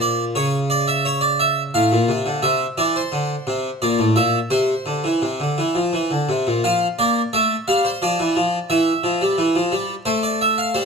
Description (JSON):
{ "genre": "classical, baroque-style two-part invention for harpsichord", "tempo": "87 BPM", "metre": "3/4", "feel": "straight", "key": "F major", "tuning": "A4 = 440 Hz", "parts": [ { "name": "harpsichord", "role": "solo", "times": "0.0-10.8 s", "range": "A2 to F5", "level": "-17 LUFS", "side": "equal", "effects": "none" } ], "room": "moderate stone room reverb, RT60 1.3 s", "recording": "close, detailed microphones", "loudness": "-17 LUFS", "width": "side -5 dB against mid", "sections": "0.0-2.4 A section; 2.4-6.6 B section; 6.6-10.8 C section", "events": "none", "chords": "0.4 C#m; 1.7 Dm/A; 2.4 Cadd9; 3.8 Bbmaj7#11/A; 4.5 C; 6.6 F; 8.0 Dmadd9/E; 8.7 Em; 10.1 F/A" }